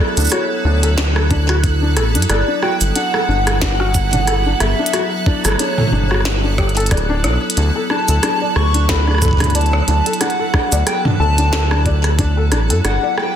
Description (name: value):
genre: IDM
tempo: 91 BPM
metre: 4/4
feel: swing 56% on 16ths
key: D major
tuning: A4 = 439 Hz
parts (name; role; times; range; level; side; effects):
- warbly nostalgic lead; melody; 0.0-13.4 s; C#5 to C#6; -22 LUFS; equal; wide subtle chorus, digital delay
- icy glass pad; sustained chords; 0.0-13.4 s; F#3 to A4; -24 LUFS; right 1 dB; chorus, built-in reverb
- felt-muted upright piano; arpeggios; 0.0-13.1 s; D4 to D5; -23 LUFS; left 3 dB; digital delay
- bubbling stepped-filter texture; texture; 0.0-13.4 s; F#6; -28 LUFS; right 3 dB; chorus, built-in reverb
- round analog bass; bass; 0.2-13.0 s; D1 to F#2; -16 LUFS; equal; none
- glitchy drum kit; drums; 0.2-13.3 s; hi-hat, rim click, shaker, snare drum, toms; -20 LUFS; right 1 dB; soft clipping on snare
- electronic kick drum; drums; 1.3-12.3 s; none; -17 LUFS; equal; none
room: light reverb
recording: dense, heavily limited modern master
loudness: -13 LUFS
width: side -9 dB against mid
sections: 0.0-13.4 A section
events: none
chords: 0.0 Dmaj9; 2.3 Gmaj9; 7.6 Dadd9; 12.8 Gmaj9